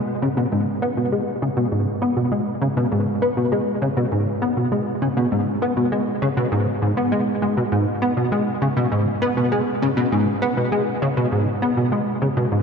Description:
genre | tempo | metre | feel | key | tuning
ambient | 100 BPM | 4/4 | straight | G# minor | A4 = 440 Hz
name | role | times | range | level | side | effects
plucky analog bass | solo | 0.2-12.6 s | G#2 to B3 | -19 LUFS | equal | ensemble chorus, tape echo
room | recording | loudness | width
wet cathedral reverb, RT60 5.4 s | in a vast, echoing space | -19 LUFS | side -6 dB against mid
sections
0.0-12.6 A section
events
none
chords
none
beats
| 0.52 1.12 1.72 2.32 | 2.92 3.52 4.12 4.72 | 5.32 5.92 6.52 7.12 | 7.72 8.32 8.92 9.52 | 10.12 10.72 11.32 11.92 | 12.52

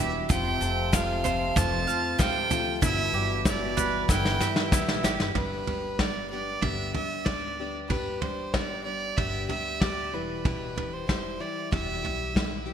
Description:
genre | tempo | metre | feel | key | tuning
indie folk with a building arrangement | 94 BPM | 4/4 | straight | G major | A4 = 436 Hz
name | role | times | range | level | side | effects
warm fiddle | melody | 0.0-12.6 s | B4 to A5 | -31 LUFS | right 4 dB | none
warm French horn | second line | 0.0-4.7 s | B2 to F3 | -36 LUFS | left 4 dB | none
picked plugged-in steel-string acoustic guitar | accompaniment | 0.0-12.7 s | E2 to G4 | -34 LUFS | left 5 dB | wide subtle chorus
bowl-back mandolin | arpeggios | 0.0-5.4 s | E4 to F5 | -32 LUFS | right 6 dB | none
upright bass | bass | 0.0-12.7 s | E1 to G2 | -35 LUFS | equal | none
soft brush drum kit | drums | 0.3-12.5 s | kick drum, snare drum, toms | -28 LUFS | equal | gated reverb
tube shaker | percussion | 0.3-5.2 s | none | -38 LUFS | left 12 dB | none
room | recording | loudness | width
moderate lush hall reverb, RT60 2.8 s | bright 1980s-style digital production | -25 LUFS | side -8 dB against mid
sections
0.0-5.4 A section; 5.4-12.7 B section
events
drum fill 4.1-5.4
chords
0.3 F; 2.8 G6; 5.4 G; 10.1 Em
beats
| 0.30 0.93 1.56 2.19 | 2.83 3.46 4.09 4.72 | 5.36 5.99 6.63 7.26 | 7.90 8.54 9.18 9.81 | 10.45 11.09 11.72 12.36

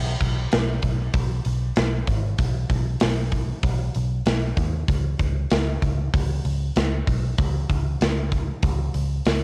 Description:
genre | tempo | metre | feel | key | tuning
rock, shoegaze and dream pop | 96 BPM | 4/4 | straight | B major | A4 = 442 Hz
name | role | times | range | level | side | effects
vintage muted picked electric bass | bass | 0.0-9.4 s | G#1 to D#2 | -26 LUFS | equal | none
big rock drum kit | drums | 0.2-9.4 s | hi-hat, kick drum, snare drum | -26 LUFS | equal | cassette tape
room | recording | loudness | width
little or no reverb | home recording on cassette | -23 LUFS | mono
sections
0.0-9.4 A section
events
none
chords
none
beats
0.52 1.15 1.77 | 2.40 3.02 3.64 4.27 | 4.89 5.52 6.14 6.76 | 7.39 8.01 8.64 9.26

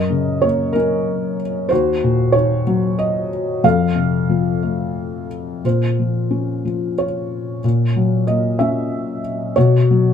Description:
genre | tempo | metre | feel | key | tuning
classical, lyrical solo piano | 61 BPM (dotted quarters) | 6/8 | rubato | Bb minor | A4 = 440 Hz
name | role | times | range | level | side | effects
felt-muted upright piano | solo | 0.0-10.1 s | Eb2 to F5 | -16 LUFS | left 1 dB | none
room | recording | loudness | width
light reverb | none | -16 LUFS | side -8 dB against mid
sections
0.0-5.6 A section; 5.6-10.1 A section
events
none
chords
0.0 Gb; 1.7 Ebm; 3.6 F; 5.6 Bbmadd9; 7.6 Gb7/Bb; 9.6 B5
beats
0.75 | 1.71 2.66 | 3.64 4.63 | 5.64 6.65 | 7.63 8.59 | 9.56

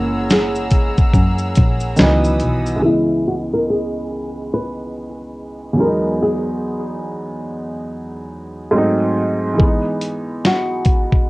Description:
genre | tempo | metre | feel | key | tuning
lo-fi hip hop | 71 BPM | 4/4 | swing 61% on 16ths | C# dorian | A4 = 439 Hz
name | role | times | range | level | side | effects
flamenco guitar | melody | 0.0-11.3 s | E4 to B4 | -20 LUFS | left 1 dB | low-pass filter
felt-muted upright piano | accompaniment | 0.0-11.3 s | C#2 to D#5 | -20 LUFS | right 1 dB | cassette tape, low-pass filter
warm studio string section | sustained chords | 0.0-2.8 s | G#4 to E6 | -27 LUFS | equal | none
clear double bass | bass | 0.0-2.8 s | F#1 to F#2 | -19 LUFS | equal | none
dusty soul sampler-style drum kit | drums | 0.3-2.8, 9.6-11.3 s | hi-hat, kick drum, shaker, snare drum | -15 LUFS | equal | none
room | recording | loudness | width
moderate studio reverb, RT60 0.6 s | worn, warbling old tape, cassette tape, warbly pitch drift | -15 LUFS | side -21 dB against mid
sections
0.0-2.8 A section; 2.8-11.3 B section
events
filter sweep 2.8-11.3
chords
0.0 F#9; 2.0 C#m11; 2.8 C#m9; 5.8 Emaj9; 8.7 G#7b9; 9.6 Emaj9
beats
0.29 1.14 1.99 | 2.83 3.68 4.52 5.37 | 6.21 7.06 7.90 8.75 | 9.59 10.44 11.28

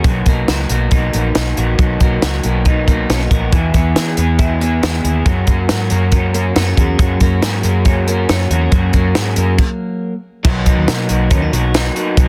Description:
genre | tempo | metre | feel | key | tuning
jangly indie pop | 139 BPM | 4/4 | straight | B major | A4 = 436 Hz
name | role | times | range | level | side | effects
raw garage guitar | accompaniment | 0.0-12.3 s | B2 to A#4 | -24 LUFS | equal | overdrive, harmonic tremolo
twelve-string electric guitar | arpeggios | 0.0-12.3 s | E3 to G#4 | -22 LUFS | equal | none
vintage muted fingered electric bass | bass | 0.0-12.3 s | A#1 to E3 | -20 LUFS | equal | none
compact cocktail drum kit | drums | 0.0-12.3 s | crash cymbal, hi-hat, kick drum, snare drum | -17 LUFS | equal | none
room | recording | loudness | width
light reverb | dense, heavily limited modern master | -15 LUFS | mono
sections
0.0-10.4 A section; 10.4-12.3 B section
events
stop 9.6-10.4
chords
0.0 Bmaj7; 3.5 E; 5.3 F#add9; 10.4 Bmaj7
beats
| 0.05 0.48 0.92 1.35 | 1.79 2.23 2.66 3.09 | 3.53 3.96 4.40 4.83 | 5.26 5.70 6.13 6.56 | 6.99 7.43 7.86 8.29 | 8.72 9.15 9.59 10.02 | 10.45 10.88 11.31 11.74 | 12.17

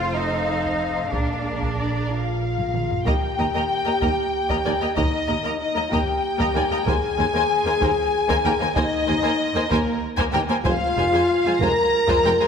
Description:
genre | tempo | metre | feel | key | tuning
cinematic, epic orchestral film score | 63 BPM (dotted quarters) | 6/8 | straight | unclear | A4 = 440 Hz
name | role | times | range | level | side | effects
warm symphonic violin section | melody | 0.0-12.5 s | Bb4 to Bb5 | -25 LUFS | left 3 dB | none
rich symphonic violin section | second line | 0.0-12.5 s | Bb4 to Bb5 | -28 LUFS | left 2 dB | none
rich symphonic viola section | accompaniment | 0.0-12.5 s | Ab3 to Bb4 | -30 LUFS | right 1 dB | none
dark French horn section | sustained chords | 0.0-12.5 s | Ab3 to Bb4 | -24 LUFS | left 2 dB | none
rich symphonic cello section | bass | 0.0-12.5 s | Eb2 to F4 | -29 LUFS | right 1 dB | none
warm symphonic double bass section | bass | 0.0-12.3 s | F1 to Eb2 | -31 LUFS | right 3 dB | none
taiko ensemble | drums | 0.6-12.5 s | none | -29 LUFS | right 1 dB | none
warm tuba | bass | 3.1-12.3 s | F1 to Eb2 | -31 LUFS | right 4 dB | none
room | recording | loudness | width
moderate scoring stage reverb, RT60 1.6 s | none | -19 LUFS | side -7 dB against mid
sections
0.0-3.1 A section; 3.1-12.5 B section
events
drum fill 2.6-3.1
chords
0.0 F; 1.1 Bb7; 3.1 Eb; 6.9 Abadd9/Eb; 10.7 Fm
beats
0.16 | 1.13 2.10 | 3.06 4.02 | 4.97 5.92 | 6.87 7.82 | 8.77 9.71 | 10.65 11.61

